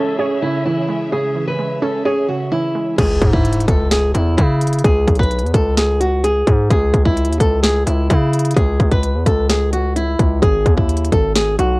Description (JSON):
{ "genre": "hip hop, trap", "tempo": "129 BPM", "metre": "4/4", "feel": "half-time", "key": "C# minor", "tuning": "A4 = 441 Hz", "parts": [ { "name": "flamenco guitar", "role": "melody", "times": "0.0-11.8 s", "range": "E4 to B4", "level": "-18 LUFS", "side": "equal", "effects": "low-pass filter, cassette tape" }, { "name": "warbly dusty pluck", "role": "accompaniment", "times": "0.0-3.0 s", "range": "C#3 to C#5", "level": "-22 LUFS", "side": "right 4 dB", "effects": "chorus, low-pass filter, cassette tape" }, { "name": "warm studio string section", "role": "sustained chords", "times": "0.0-2.9 s", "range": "C#3 to E5", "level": "-29 LUFS", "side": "left 1 dB", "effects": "low-pass filter, cassette tape" }, { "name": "distorted 808-style bass", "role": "bass", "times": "3.0-11.8 s", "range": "G#1 to C#3", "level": "-17 LUFS", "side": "equal", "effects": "distortion" }, { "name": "trap drum kit", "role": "drums", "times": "3.0-11.7 s", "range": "crash cymbal, hi-hat, kick drum, snare drum", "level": "-16 LUFS", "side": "equal", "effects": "cassette tape" }, { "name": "impact", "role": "sound effects", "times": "3.0-4.8 s", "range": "none", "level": "-26 LUFS", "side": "equal", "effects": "none" } ], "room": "little or no reverb", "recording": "home recording on cassette", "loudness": "-14 LUFS", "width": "side -24 dB against mid", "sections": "0.0-3.0 A section; 3.0-11.8 B section", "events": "impact 3.0-4.8", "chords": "0.0 C#m; 10.4 G#m" }